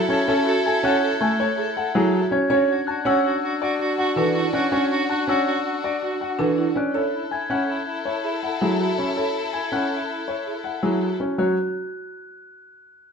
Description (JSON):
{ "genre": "classical, minimalist pattern music", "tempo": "162 BPM", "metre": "6/4", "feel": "straight", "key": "F# minor", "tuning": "A4 = 441 Hz", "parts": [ { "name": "warm soprano saxophone", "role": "second line", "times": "0.0-11.1 s", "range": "E4 to A4", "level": "-29 LUFS", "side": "right 2 dB", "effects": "none" }, { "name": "rich studio violin section", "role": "sustained chords", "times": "0.0-11.2 s", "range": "D4 to A4", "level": "-28 LUFS", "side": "left 2 dB", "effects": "none" }, { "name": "buzzing marimba with medium hard mallets", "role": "arpeggios", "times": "0.0-11.6 s", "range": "D4 to C#5", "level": "-26 LUFS", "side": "right 6 dB", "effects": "none" }, { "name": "clear concert grand piano", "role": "melody", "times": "0.1-11.6 s", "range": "G#4 to A5", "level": "-28 LUFS", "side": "left 6 dB", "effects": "none" }, { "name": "clear concert grand piano", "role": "accompaniment", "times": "0.1-11.6 s", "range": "E3 to C#4", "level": "-24 LUFS", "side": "equal", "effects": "none" }, { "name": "glockenspiel with rubber mallets", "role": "arpeggios", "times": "0.1-11.6 s", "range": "E6 to G#6", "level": "-30 LUFS", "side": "left 4 dB", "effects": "none" } ], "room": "moderate large studio reverb, RT60 1.2 s", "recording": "none", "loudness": "-20 LUFS", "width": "side -6 dB against mid", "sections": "0.0-11.4 A section; 11.4-13.1 B section", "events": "none", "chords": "0.0 F#m7; 2.5 Dmaj7; 6.9 F#m7; 11.4 F#5", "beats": "| 0.28 0.65 1.02 1.39 1.76 2.13 | 2.50 2.87 3.24 3.61 3.98 4.35 | 4.72 5.09 5.46 5.83 6.21 6.58 | 6.95 7.32 7.69 8.06 8.43 8.80 | 9.17 9.54 9.91 10.28 10.65 11.02 | 11.39" }